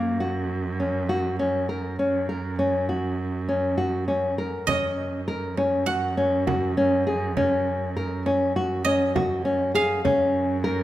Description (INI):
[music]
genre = contemporary instrumental, chamber music in an uneven meter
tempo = 201 BPM (eighths)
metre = 9/8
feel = straight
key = F# major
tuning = A4 = 440 Hz
[part]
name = nylon-string guitar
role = arpeggios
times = 0.0-10.8 s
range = A#3 to A#4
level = -23 LUFS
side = left 1 dB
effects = none
[part]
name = rich cello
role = bass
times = 0.0-10.8 s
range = F#2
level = -29 LUFS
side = right 3 dB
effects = none
[part]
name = frame drum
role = percussion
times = 4.7-10.3 s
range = none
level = -33 LUFS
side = right 6 dB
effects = none
[part]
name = guzheng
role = texture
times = 4.7-10.8 s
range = D#5 to F#5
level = -28 LUFS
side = right 5 dB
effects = none
[sound]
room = moderate recital hall reverb, RT60 1.8 s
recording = none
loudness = -22 LUFS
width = side -14 dB against mid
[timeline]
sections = 0.0-4.7 A section; 4.7-10.8 B section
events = none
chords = 0.0 F#; 4.7 F#5